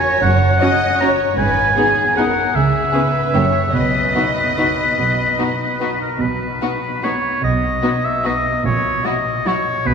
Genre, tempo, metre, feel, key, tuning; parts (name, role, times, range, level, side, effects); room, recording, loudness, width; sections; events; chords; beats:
classical; 138-166 BPM; 3/4; rubato; B major; A4 = 440 Hz
bright oboe; second line; 0.0-9.9 s; A#4 to A#5; -18 LUFS; equal
warm symphonic violin section; second line; 0.0-9.5 s; D#4 to D#5; -24 LUFS; left 3 dB
rich studio cello section; bass; 0.2-9.9 s; F#2 to C#3; -23 LUFS; right 2 dB
rich studio double bass section; bass; 0.2-9.9 s; F#1 to C#2; -25 LUFS; right 2 dB
rich studio violin section; melody; 0.6-9.6 s; F#4 to C#5; -28 LUFS; left 5 dB
rich studio viola section; accompaniment; 0.6-9.5 s; F#3 to F#4; -24 LUFS; equal
wet cathedral reverb, RT60 5.8 s; recorded in a church or concert hall; -15 LUFS; side -6 dB against mid
0.0-6.2 A section; 6.2-9.9 B section
0.0 F#5; 1.4 G#m; 2.6 C#m7; 3.3 F#7(no3); 3.7 B; 8.7 F#/A#
| 0.22 0.61 1.01 | 1.39 1.77 2.17 | 2.55 2.94 3.35 | 3.74 4.15 4.58 | 4.98 5.39 5.81 | 6.21 6.62 7.04 | 7.43 7.83 8.25 | 8.65 9.05 9.47 | 9.87